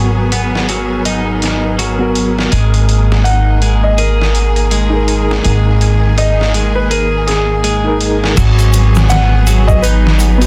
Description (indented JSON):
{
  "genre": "trip hop",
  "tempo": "82 BPM",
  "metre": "4/4",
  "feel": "swing 59% on 16ths",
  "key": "G# minor",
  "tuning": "A4 = 440 Hz",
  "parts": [
    { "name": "overdriven reed electric piano", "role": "accompaniment", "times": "0.0-10.5 s", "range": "B3 to A#4", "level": "-22 LUFS", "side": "equal", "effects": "fast tremolo, vintage 12-bit sampler grit, tape echo" },
    { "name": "bright studio string section", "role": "sustained chords", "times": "0.0-10.5 s", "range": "D#3 to G#4", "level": "-23 LUFS", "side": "equal", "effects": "none" },
    { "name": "twelve-string electric guitar", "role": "arpeggios", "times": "0.0-10.5 s", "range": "F#3 to G#4", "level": "-22 LUFS", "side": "equal", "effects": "low-pass filter, tape echo" },
    { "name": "upright bass", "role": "bass", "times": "0.0-10.5 s", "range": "G#1", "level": "-15 LUFS", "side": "equal", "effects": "none" },
    { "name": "wind-like tuned noise texture", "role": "texture", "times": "0.0-8.4 s", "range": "A#4", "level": "-32 LUFS", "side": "equal", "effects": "none" },
    { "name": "trip hop sampler-style drum kit", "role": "drums", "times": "0.3-10.5 s", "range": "crash cymbal, hi-hat, kick drum, snare drum", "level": "-21 LUFS", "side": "equal", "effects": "high-pass filter on hats, studio reverb, high-pass filter on snare, high-pass filter on cymbals, high-pass filter on kick" },
    { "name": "felt-muted upright piano", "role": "melody", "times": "3.2-10.5 s", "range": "G#4 to F#5", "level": "-22 LUFS", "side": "equal", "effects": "vintage 12-bit sampler grit, dub echo" },
    { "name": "egg shaker", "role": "percussion", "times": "8.4-10.5 s", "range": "none", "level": "-29 LUFS", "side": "equal", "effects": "none" }
  ],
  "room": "light reverb, small room ambience",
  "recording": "dense, heavily limited modern master",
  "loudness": "-12 LUFS",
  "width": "mono",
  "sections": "0.0-8.4 A section; 8.4-10.5 B section",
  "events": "none",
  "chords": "0.0 G#m7; 2.5 D#sus4/G#; 8.4 G#m7"
}